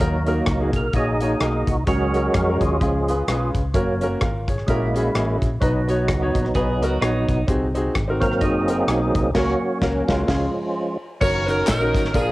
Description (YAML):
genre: uptempo gospel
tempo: 128 BPM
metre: 4/4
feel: swing 58% on 8ths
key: F# major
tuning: A4 = 439 Hz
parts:
  - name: clear concert grand piano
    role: accompaniment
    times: 0.0-12.3 s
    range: A#2 to C#5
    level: -25 LUFS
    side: equal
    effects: cassette tape
  - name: percussive tonewheel organ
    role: sustained chords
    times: 0.0-12.3 s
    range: D#3 to A#4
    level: -23 LUFS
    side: right 1 dB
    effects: slow rotary speaker, overdrive, chorus vibrato, cassette tape
  - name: hollow-body short-scale fingered electric bass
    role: bass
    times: 0.0-12.3 s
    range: F#1 to E#2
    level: -25 LUFS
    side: equal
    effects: none
  - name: modern studio drum kit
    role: drums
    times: 0.0-12.3 s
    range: crash cymbal, hi-hat, kick drum, rim click, snare drum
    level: -25 LUFS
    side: equal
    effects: cassette tape
  - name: clean electric guitar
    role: second line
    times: 6.6-7.5 s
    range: D#4 to G#4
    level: -30 LUFS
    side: right 3 dB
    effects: wide subtle chorus, cassette tape
  - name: bright saxophone section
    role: melody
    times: 11.2-12.3 s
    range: C#4 to C#5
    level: -21 LUFS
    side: equal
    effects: tape echo
  - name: tambourine and handclaps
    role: percussion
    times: 11.2-12.3 s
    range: none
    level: -34 LUFS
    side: left 1 dB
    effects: none
room: light reverb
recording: home recording on cassette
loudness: -18 LUFS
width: side -18 dB against mid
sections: 0.0-11.2 A section; 11.2-12.3 B section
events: tonewheel organ solo 0.0-11.2; band accent 9.3-11.2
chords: 0.0 D#m; 1.9 C#sus4; 2.8 C#; 3.7 F#; 4.7 F#7/A#; 5.6 B; 7.5 G#7; 9.3 F#/C#; 10.3 C#; 11.2 F#6